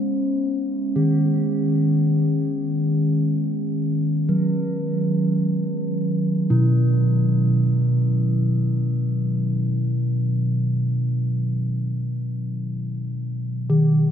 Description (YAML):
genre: world meditative, free-time meditation music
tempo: free time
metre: none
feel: none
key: unclear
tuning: A4 = 438 Hz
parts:
  - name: bronze singing bowl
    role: solo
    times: 0.0-14.1 s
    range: B2 to C#4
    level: -19 LUFS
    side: equal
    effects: analog delay
room: wet cathedral reverb, RT60 5.5 s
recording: dreamy mix soaked in reverb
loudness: -19 LUFS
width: side -9 dB against mid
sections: 0.0-12.9 A section; 12.9-14.1 A section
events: none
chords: none